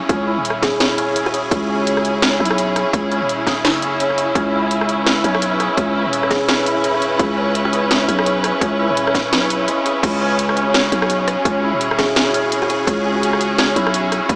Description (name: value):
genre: half-time drum and bass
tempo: 169 BPM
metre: 4/4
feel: swing 57% on 16ths, half-time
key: C# minor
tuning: A4 = 440 Hz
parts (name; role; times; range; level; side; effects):
- rich studio string section; sustained chords; 0.0-14.4 s; C#3 to B4; -22 LUFS; equal; sidechain pumping
- santur; arpeggios; 0.0-14.4 s; G#3 to C#5; -24 LUFS; equal; diffuse ambient delay
- growling 808-style bass; bass; 0.1-14.4 s; D#1 to C#2; -26 LUFS; equal; none
- drum and bass drum kit; drums; 0.1-14.4 s; crash cymbal, hi-hat, rim click, snare drum; -23 LUFS; equal; overdrive, studio reverb
- electronic kick drum; drums; 0.1-14.4 s; none; -23 LUFS; equal; studio reverb
- buzzing kalimba; melody; 0.6-1.4, 6.3-6.5, 12.0-12.8 s; F#4 to G#4; -29 LUFS; equal; tape echo
room: wet huge ambient reverb, RT60 7.8 s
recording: dreamy mix soaked in reverb, small speaker sound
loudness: -17 LUFS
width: mono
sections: 0.0-14.4 A section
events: none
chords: 0.0 C#m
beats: | 0.09 0.45 0.80 1.16 | 1.51 1.87 2.22 2.58 | 2.93 3.29 3.64 4.00 | 4.35 4.71 5.06 5.42 | 5.77 6.13 6.48 6.84 | 7.19 7.55 7.90 8.26 | 8.61 8.97 9.32 9.68 | 10.04 10.39 10.74 11.10 | 11.46 11.81 12.16 12.52 | 12.88 13.23 13.59 13.94 | 14.29